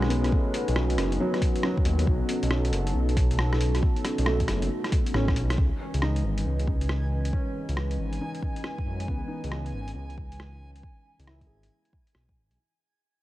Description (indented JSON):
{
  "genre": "future garage",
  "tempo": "137 BPM",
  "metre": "4/4",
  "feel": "swing 64% on 16ths",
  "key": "C# minor",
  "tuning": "A4 = 436 Hz",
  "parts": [
    { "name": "felt-muted upright piano", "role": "accompaniment", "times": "0.0-12.6 s", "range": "F#3 to G#4", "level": "-33 LUFS", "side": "equal", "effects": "vintage 12-bit sampler grit, sidechain pumping, low-pass filter, tape echo" },
    { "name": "dark analog pad", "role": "sustained chords", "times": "0.0-12.6 s", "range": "E3 to D#5", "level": "-32 LUFS", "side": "equal", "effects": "chorus, vintage 12-bit sampler grit, sidechain pumping" },
    { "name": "dark detuned saw bass", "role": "bass", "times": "0.0-12.6 s", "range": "F#1 to F#2", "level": "-27 LUFS", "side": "equal", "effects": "tube saturation, sidechain pumping" },
    { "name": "lo-fi sampler-style drum kit", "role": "drums", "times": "0.0-12.6 s", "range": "hi-hat, rim click", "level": "-34 LUFS", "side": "equal", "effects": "overdrive, small room reverb" },
    { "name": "electronic kick drum", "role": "drums", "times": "0.3-12.4 s", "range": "none", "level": "-26 LUFS", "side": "equal", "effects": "small room reverb" },
    { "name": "backwards swelling texture", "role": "texture", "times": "6.1-12.6 s", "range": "G#5", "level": "-45 LUFS", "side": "right 1 dB", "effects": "built-in reverb" }
  ],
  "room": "little or no reverb",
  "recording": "none",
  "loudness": "-24 LUFS",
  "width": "side -16 dB against mid",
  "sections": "0.0-5.6 A section; 5.6-12.6 B section",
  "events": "drum fill 5.1-5.6; fade-out 5.6-12.6; filter sweep on felt piano 5.6-12.6",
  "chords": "0.0 B9; 5.6 C#m9"
}